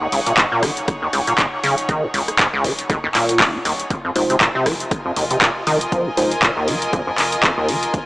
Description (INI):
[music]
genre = acid house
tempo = 119 BPM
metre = 4/4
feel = swing 56% on 16ths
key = F phrygian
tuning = A4 = 440 Hz
[part]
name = acid bass, square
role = riff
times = 0.0-8.0 s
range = Eb1 to F3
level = -20 LUFS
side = equal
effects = overdrive, lush chorus, sidechain pumping, dub echo
[part]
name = clear studio string section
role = texture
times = 0.0-8.1 s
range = Eb4 to Ab5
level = -25 LUFS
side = equal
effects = sidechain pumping
[part]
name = warm sub bass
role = bass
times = 0.1-7.9 s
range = Eb1 to F1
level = -38 LUFS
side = equal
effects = sidechain pumping
[part]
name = punchy analog drum machine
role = drums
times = 0.1-8.1 s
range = handclaps, hi-hat, rim click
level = -19 LUFS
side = equal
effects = overdrive
[part]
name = electronic kick drum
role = drums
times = 0.4-8.1 s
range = none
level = -24 LUFS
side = equal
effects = overdrive
[part]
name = mellow tine electric piano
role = stabs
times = 4.2-6.3 s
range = Ab3 to C5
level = -22 LUFS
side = equal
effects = medium stereo tremolo, dub echo
[sound]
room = moderate lush hall reverb, RT60 2.7 s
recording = small speaker sound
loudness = -16 LUFS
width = side -21 dB against mid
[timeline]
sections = 0.0-8.1 A section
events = filter sweep on acid bass 0.0-8.1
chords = 0.0 Ebm7; 3.9 Fm7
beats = 0.38 0.88 1.38 | 1.89 2.39 2.90 3.40 | 3.90 4.41 4.91 5.42 | 5.92 6.43 6.93 7.43 | 7.94